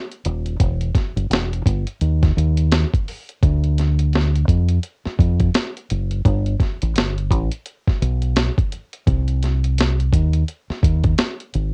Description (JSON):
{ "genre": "R&B, neo-soul", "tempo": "85 BPM", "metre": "4/4", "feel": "swing 60% on 16ths", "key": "unclear", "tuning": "A4 = 441 Hz", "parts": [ { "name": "boom bap sampler-style drum kit", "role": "drums", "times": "0.1-11.7 s", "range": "hi-hat, kick drum, snare drum", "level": "-22 LUFS", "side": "equal", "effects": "cassette tape" }, { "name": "deep dub fingered electric bass", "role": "bass", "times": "0.3-11.7 s", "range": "Eb1 to F2", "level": "-20 LUFS", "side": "equal", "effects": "none" } ], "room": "little or no reverb", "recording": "home recording on cassette", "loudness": "-20 LUFS", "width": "mono", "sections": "0.0-11.7 A section", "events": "none", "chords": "none" }